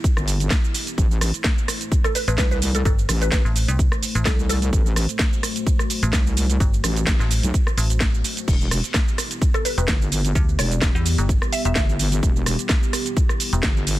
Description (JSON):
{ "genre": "bass house", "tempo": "128 BPM", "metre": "4/4", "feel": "swing 54% on 16ths", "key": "E minor", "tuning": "A4 = 441 Hz", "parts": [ { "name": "dark analog pad", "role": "sustained chords", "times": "0.0-14.0 s", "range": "A3 to C5", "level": "-32 LUFS", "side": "left 1 dB", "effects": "chorus, sidechain pumping" }, { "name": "electronic kick drum", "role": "drums", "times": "0.0-13.7 s", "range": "none", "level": "-20 LUFS", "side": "equal", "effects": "none" }, { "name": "garage drum kit", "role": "drums", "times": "0.0-14.0 s", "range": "crash cymbal, hi-hat, rim click, shaker, snare drum", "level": "-25 LUFS", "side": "right 1 dB", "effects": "none" }, { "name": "wobble bass", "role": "bass", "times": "0.2-14.0 s", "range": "E1 to C2", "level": "-22 LUFS", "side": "equal", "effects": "chorus, tube saturation, sidechain pumping" }, { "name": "mallet-like synth pluck", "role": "melody", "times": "2.0-5.0, 9.5-11.8 s", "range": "A4 to E5", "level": "-28 LUFS", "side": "equal", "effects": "ensemble chorus, tape echo" }, { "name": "metallic FM bass", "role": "bass", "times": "2.3-13.6 s", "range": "E1 to E2", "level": "-21 LUFS", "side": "equal", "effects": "tube saturation, sidechain pumping" } ], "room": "little or no reverb", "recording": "dense, heavily limited modern master", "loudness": "-18 LUFS", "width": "side -16 dB against mid", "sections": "0.0-14.0 A section", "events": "none", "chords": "0.0 Em; 1.0 Am; 8.5 Em" }